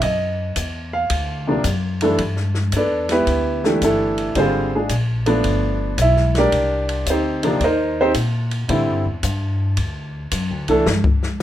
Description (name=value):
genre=jazz piano trio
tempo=111 BPM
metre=4/4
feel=swing 68% on 8ths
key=G major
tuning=A4 = 440 Hz
part: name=warm baby grand piano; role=melody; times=0.0-10.9 s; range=G2 to E#5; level=-18 LUFS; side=right 1 dB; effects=none
part: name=upright bass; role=bass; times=0.0-11.2 s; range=G1 to Bb2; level=-22 LUFS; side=left 1 dB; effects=none
part: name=open jazz drum kit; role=drums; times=0.0-11.4 s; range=hi-hat, kick drum, ride cymbal, snare drum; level=-26 LUFS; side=left 2 dB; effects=none
room=moderate club reverb, RT60 0.6 s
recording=none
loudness=-17 LUFS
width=side -12 dB against mid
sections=0.0-2.2 A section; 2.2-11.4 B section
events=grand piano solo 2.2-11.4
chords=0.0 D#m; 1.1 D(#9); 2.2 G69; 4.4 Dm7b5; 5.4 G7; 6.5 Cm9; 8.7 Am7; 9.8 D7; 10.9 N.C.